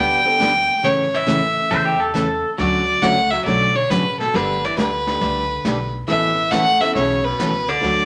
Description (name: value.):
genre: country, western swing.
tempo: 137 BPM.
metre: 4/4.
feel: swing 67% on 8ths.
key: unclear.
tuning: A4 = 439 Hz.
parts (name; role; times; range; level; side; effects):
clear fiddle; melody; 0.0-8.1 s; A4 to G5; -20 LUFS; equal; none.
archtop guitar, miked and amplified; second line; 0.0-8.1 s; B2 to B3; -30 LUFS; equal; none.
picked steel-string acoustic guitar; accompaniment; 0.0-8.1 s; B2 to A4; -26 LUFS; equal; none.
upright bass; bass; 0.0-8.1 s; G1 to A2; -33 LUFS; equal; none.
dark upright piano; accompaniment; 0.2-8.1 s; G3 to B4; -31 LUFS; equal; none.
vintage brush drum kit; drums; 0.4-8.1 s; brushed snare drum, hi-hat, kick drum, snare drum; -31 LUFS; equal; none.
pedal steel guitar; second line; 1.7-2.5 s; G4 to C5; -22 LUFS; equal; none.
room: wet studio reverb, RT60 0.9 s.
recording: none.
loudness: -18 LUFS.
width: mono.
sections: 0.0-8.1 A section.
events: none.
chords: 0.0 G; 0.8 A; 2.6 Dmaj7; 4.3 Gsus2; 6.1 Aadd9.